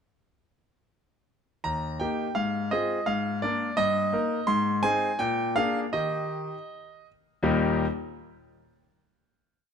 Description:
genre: classical-period piano sonatina.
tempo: 82 BPM.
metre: 2/4.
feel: straight.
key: Eb major.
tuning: A4 = 440 Hz.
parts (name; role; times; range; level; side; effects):
bright concert grand piano; solo; 1.6-7.8 s; Eb2 to C6; -25 LUFS; equal; none.
room: light reverb.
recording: close, detailed microphones.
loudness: -25 LUFS.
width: side -7 dB against mid.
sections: 1.6-7.4 A section; 7.4-8.9 final chord.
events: none.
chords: 1.6 Eb; 2.4 Fm/Ab; 3.1 Bb7/Ab; 3.8 Eb/G; 4.5 Ab; 5.2 Bb7; 5.9 Eb.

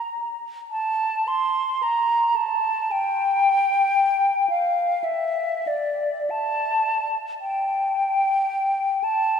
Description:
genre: classical, free, expressive piece for unaccompanied flute.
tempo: 44-57 BPM.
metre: 4/4.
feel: rubato.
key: unclear.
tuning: A4 = 440 Hz.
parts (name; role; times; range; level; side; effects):
mellow silver concert flute; solo; 0.0-9.4 s; D5 to C6; -20 LUFS; left 1 dB; none.
room: wet cathedral reverb, RT60 4.4 s.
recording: heard from further back in the room.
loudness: -20 LUFS.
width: side -7 dB against mid.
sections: 0.0-9.4 A section.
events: none.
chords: none.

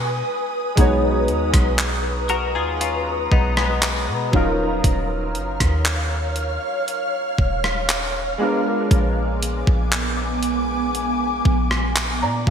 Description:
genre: contemporary R&B.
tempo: 59 BPM.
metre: 4/4.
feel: straight.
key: Eb minor.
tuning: A4 = 439 Hz.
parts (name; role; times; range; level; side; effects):
warm grand piano; accompaniment; 0.0-12.5 s; Gb3 to Bb5; -25 LUFS; equal; ensemble chorus.
ethereal airy pad; sustained chords; 0.0-12.5 s; Cb4 to F6; -24 LUFS; equal; ensemble chorus, built-in reverb.
soft 808-style bass; bass; 0.0-12.5 s; Eb1 to B2; -24 LUFS; equal; none.
clean 12-bit digital drum machine; drums; 0.8-12.5 s; handclaps, hi-hat, kick drum, rim click; -22 LUFS; equal; gated reverb.
direct-recorded clean electric guitar; arpeggios; 2.3-4.3 s; G#3 to Bb4; -25 LUFS; left 5 dB; analog chorus, ping-pong delay.
room: moderate lush hall reverb, RT60 3.0 s.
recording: bright 1980s-style digital production.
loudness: -18 LUFS.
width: side -8 dB against mid.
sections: 0.0-12.5 A section.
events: none.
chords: 0.0 B6; 4.3 Ebm9; 8.4 Bb7b9.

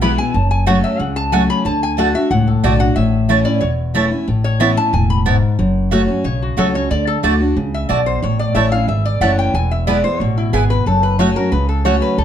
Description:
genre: bluegrass.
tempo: 182 BPM.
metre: 4/4.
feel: straight.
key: unclear.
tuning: A4 = 440 Hz.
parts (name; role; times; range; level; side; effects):
lap resonator guitar; second line; 0.0-12.2 s; E4 to B5; -20 LUFS; left 2 dB; none.
picked steel-string acoustic guitar; accompaniment; 0.0-12.2 s; E2 to F#4; -17 LUFS; left 2 dB; none.
mandolin; stabs; 0.0-11.9 s; A3 to A5; -20 LUFS; right 7 dB; none.
upright bass; bass; 0.0-12.2 s; E1 to D2; -19 LUFS; right 1 dB; none.
room: light reverb.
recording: dark, warm production.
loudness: -13 LUFS.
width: side -9 dB against mid.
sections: 0.0-5.6 A section; 5.6-12.2 A section.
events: resonator guitar played with a steel bar solo 0.0-5.6, 5.6-12.2.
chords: 0.3 F#m; 1.7 D; 3.0 A; 4.3 Aadd9; 5.6 F#m; 6.9 D; 8.2 A; 9.5 E; 10.9 F#m.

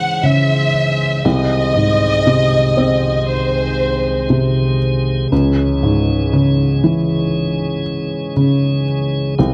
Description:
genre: pop ballad.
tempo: 59 BPM.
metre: 4/4.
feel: straight.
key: C# harmonic minor.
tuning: A4 = 440 Hz.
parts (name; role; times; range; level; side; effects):
warm studio violin section; melody; 0.0-4.3 s; B#4 to F#5; -20 LUFS; equal; tape echo.
felt-muted upright piano; accompaniment; 0.0-9.5 s; B#1 to B#3; -17 LUFS; equal; none.
tonewheel organ; sustained chords; 0.0-9.5 s; B#1 to C#5; -25 LUFS; equal; slow rotary speaker.
room: light reverb.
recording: dry, close 1970s-style studio recording.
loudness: -16 LUFS.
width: mono.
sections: 0.0-9.5 A section.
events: none.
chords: 0.0 C#m; 1.2 G#/B#; 5.3 C#m.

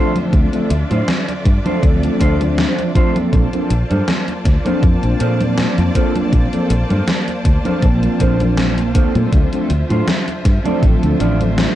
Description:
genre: vaporwave.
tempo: 80 BPM.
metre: 4/4.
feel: swing 54% on 16ths.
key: D minor.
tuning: A4 = 440 Hz.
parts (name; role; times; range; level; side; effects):
mellow synth brass; accompaniment; 0.0-11.8 s; F3 to A5; -20 LUFS; equal; analog chorus, analog delay.
clear studio string section; sustained chords; 0.0-11.8 s; D3 to A5; -26 LUFS; equal; none.
mellow electric guitar; riff; 0.0-11.4 s; D4 to D5; -25 LUFS; right 2 dB; lush chorus, vintage 12-bit sampler grit, analog delay.
gated 80s digital drum machine; drums; 0.2-11.7 s; congas, hi-hat, snare drum; -22 LUFS; equal; gated reverb, gated reverb snare, overdrive, studio ambience.
fingered electric bass; bass; 0.3-11.7 s; A1 to Bb2; -17 LUFS; equal; none.
electronic kick drum; drums; 0.3-11.0 s; none; -15 LUFS; equal; studio ambience.
room: little or no reverb.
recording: dark, warm production, cassette tape.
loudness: -13 LUFS.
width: side -13 dB against mid.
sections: 0.0-11.8 A section.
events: none.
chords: 0.0 Dm7; 3.3 Bbmaj9; 9.3 Dm7.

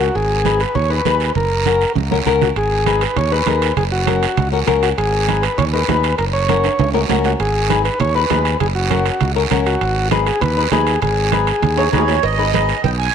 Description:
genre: latin, cumbia.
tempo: 199 BPM.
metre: 4/4.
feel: straight.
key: G# minor.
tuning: A4 = 440 Hz.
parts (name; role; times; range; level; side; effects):
combo organ; melody; 0.0-11.9 s; F#4 to C#5; -20 LUFS; equal; none.
flamenco guitar; accompaniment; 0.0-12.7 s; C#4 to C#5; -20 LUFS; left 9 dB; none.
modern bright fingered electric bass; bass; 0.0-13.1 s; F#1 to D#2; -20 LUFS; right 1 dB; none.
guiro; percussion; 0.0-13.1 s; none; -25 LUFS; right 13 dB; none.
congas; percussion; 0.2-13.0 s; none; -23 LUFS; right 11 dB; none.
timbales and cowbell; percussion; 2.6-13.0 s; none; -26 LUFS; right 12 dB; none.
accordion; second line; 11.8-13.1 s; C#5 to G#5; -19 LUFS; right 9 dB; light tremolo tuning.
room: moderate echo chamber reverb, RT60 2.0 s, small room ambience.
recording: 1960s-style stereo with parts hard left and right.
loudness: -14 LUFS.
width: side -7 dB against mid.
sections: 0.0-12.2 A section.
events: drum fill 2.0-2.6, 6.6-7.4, 11.8-12.2.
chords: 0.1 G#m; 1.4 F#; 2.6 G#m; 3.8 F#; 5.0 G#m; 6.2 F#; 7.4 G#m; 8.6 F#; 9.8 G#m.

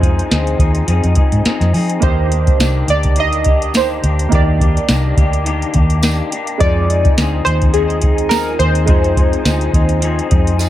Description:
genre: indie pop, bedroom pop.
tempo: 105 BPM.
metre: 4/4.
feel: swing 55% on 16ths.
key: F dorian.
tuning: A4 = 440 Hz.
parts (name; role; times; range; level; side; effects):
warm analog keys; melody; 0.0-10.6 s; Ab4 to Eb5; -19 LUFS; right 2 dB; analog chorus, digital delay.
clear upright piano; accompaniment; 0.0-10.7 s; Ab3 to Eb5; -26 LUFS; right 6 dB; cassette tape.
electric guitar through a small old amp; accompaniment; 0.0-10.7 s; Eb3 to Ab4; -21 LUFS; left 5 dB; ensemble chorus, warbly pitch drift.
vintage muted fingered electric bass; bass; 0.0-10.7 s; C2 to F3; -16 LUFS; equal; none.
soft vintage rhythm box; drums; 0.0-10.7 s; hi-hat, kick drum, snare drum; -15 LUFS; equal; none.
tambourine; percussion; 2.6-10.7 s; none; -29 LUFS; right 6 dB; none.
room: light reverb, digital ambience.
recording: none.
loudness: -12 LUFS.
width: side -13 dB against mid.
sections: 0.0-10.7 A section.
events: none.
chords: 0.0 Fm7; 2.0 Ebmaj7; 6.6 Fm7.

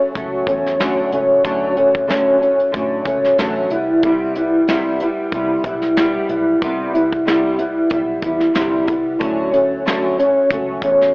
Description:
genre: indie pop, bedroom pop.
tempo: 93 BPM.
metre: 4/4.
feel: swing 55% on 16ths.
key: D major.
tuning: A4 = 439 Hz.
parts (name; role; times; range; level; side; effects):
flamenco guitar; accompaniment; 0.0-11.1 s; C3 to E4; -15 LUFS; equal; ensemble chorus, vibrato effect.
vintage muted fingered electric bass; bass; 0.0-11.1 s; G1 to A2; -36 LUFS; equal; transformer saturation.
soft brush drum kit; drums; 0.2-11.1 s; hi-hat, kick drum, snare drum; -24 LUFS; equal; none.
room: light reverb, small room reverb.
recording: dry, gritty hardware recording, cassette tape, AM radio sound.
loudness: -14 LUFS.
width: side -29 dB against mid.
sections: 0.0-11.1 A section.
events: none.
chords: 0.0 Dmaj7; 3.7 Cmaj7; 9.2 Dmaj7.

